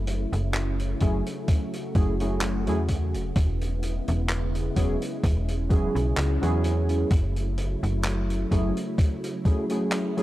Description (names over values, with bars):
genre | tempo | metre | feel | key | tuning
vaporwave | 64 BPM | 4/4 | swing 54% on 16ths | unclear | A4 = 440 Hz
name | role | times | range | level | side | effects
soft string machine | sustained chords | 0.0-10.2 s | C#3 to F#4 | -32 LUFS | equal | ensemble chorus
slap-like FM bass | bass | 0.0-8.7 s | E1 to E2 | -26 LUFS | equal | tube saturation
vintage drum kit | drums | 0.1-10.2 s | handclaps, hi-hat | -35 LUFS | equal | none
warbly lo-fi synth keys | accompaniment | 1.0-10.2 s | F#3 to G#4 | -29 LUFS | right 1 dB | lush chorus, vintage 12-bit sampler grit, analog delay
electronic kick drum | drums | 1.0-9.7 s | none | -22 LUFS | equal | none
room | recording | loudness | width
studio ambience | dark, warm production | -23 LUFS | side -15 dB against mid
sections
0.0-10.2 A section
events
none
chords
0.0 F#m7; 3.4 E6; 7.1 F#m7